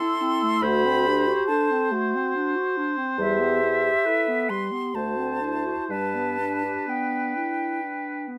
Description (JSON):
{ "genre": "classical, slow romantic movement for wind quintet", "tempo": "60-72 BPM", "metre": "3/4", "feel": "rubato", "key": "G major", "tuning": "A4 = 440 Hz", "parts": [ { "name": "silver concert flute", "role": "melody", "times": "0.0-8.3 s", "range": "E5 to C6", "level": "-29 LUFS", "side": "equal", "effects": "none" }, { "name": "warm oboe", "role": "second line", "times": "0.0-8.4 s", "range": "A4 to C5", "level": "-31 LUFS", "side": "equal", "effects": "none" }, { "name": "dark clarinet", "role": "accompaniment", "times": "0.0-8.4 s", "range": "G3 to G4", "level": "-32 LUFS", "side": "equal", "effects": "none" }, { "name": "mellow French horn", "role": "accompaniment", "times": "0.0-8.3 s", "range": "D4 to A4", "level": "-31 LUFS", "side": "equal", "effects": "none" }, { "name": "mellow bassoon", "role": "bass", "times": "0.6-6.7 s", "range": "D2 to G2", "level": "-30 LUFS", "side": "equal", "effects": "none" } ], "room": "light reverb", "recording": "none", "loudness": "-24 LUFS", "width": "mono", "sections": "0.0-8.4 A section", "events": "none", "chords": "0.0 Am; 0.6 D7; 3.2 Em; 4.9 D7; 5.9 G" }